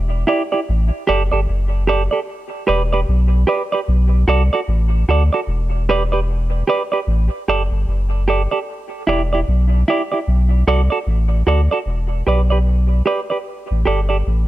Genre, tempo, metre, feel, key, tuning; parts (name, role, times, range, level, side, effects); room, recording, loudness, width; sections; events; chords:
dub reggae; 75 BPM; 4/4; swing 61% on 16ths; E minor; A4 = 440 Hz
warm sub bass; bass; 0.0-14.5 s; E1 to D2; -16 LUFS; equal
semi-hollow electric guitar; accompaniment; 0.3-14.2 s; E4 to D5; -19 LUFS; right 3 dB; dub echo
digital ambience; -15 LUFS; side -15 dB against mid
0.0-11.9 A section; 11.9-14.5 B section
0.0 Em7; 0.7 A7sus4; 2.3 Em7; 3.9 Bm7; 5.5 Em7; 7.1 A7sus4; 8.7 Em7; 10.3 Bm7; 11.9 Em7; 13.5 A7sus4